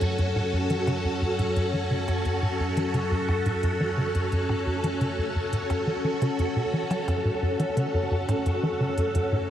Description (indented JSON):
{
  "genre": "ambient, sequencer-driven space music",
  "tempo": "87 BPM",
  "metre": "4/4",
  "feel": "straight",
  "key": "F# minor",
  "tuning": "A4 = 440 Hz",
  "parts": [
    { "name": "string machine, full ensemble", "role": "sustained chords", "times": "0.0-9.5 s", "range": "C#4 to A4", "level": "-27 LUFS", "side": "equal", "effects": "phaser, ensemble chorus" },
    { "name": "tight sequencer bass", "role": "riff", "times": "0.0-9.4 s", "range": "F#2 to F#3", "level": "-27 LUFS", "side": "equal", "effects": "wide subtle chorus, tape echo" },
    { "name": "analog drone", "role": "bass", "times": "0.0-9.5 s", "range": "F#2", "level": "-33 LUFS", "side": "equal", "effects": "chorus" },
    { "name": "electronic hi-hat and percussion blips", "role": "percussion", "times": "0.0-9.3 s", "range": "none", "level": "-44 LUFS", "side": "right 2 dB", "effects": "tape echo" }
  ],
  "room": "moderate lush hall reverb, RT60 2.6 s",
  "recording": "none",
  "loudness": "-24 LUFS",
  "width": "side -11 dB against mid",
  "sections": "0.0-9.5 A section",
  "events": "filter sweep on analog synth bass 0.0-9.5",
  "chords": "0.0 F#m",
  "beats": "0.18 0.87 | 1.56 2.25 2.94 3.63 | 4.32 5.01 5.70 6.39 | 7.08 7.77 8.46 9.15"
}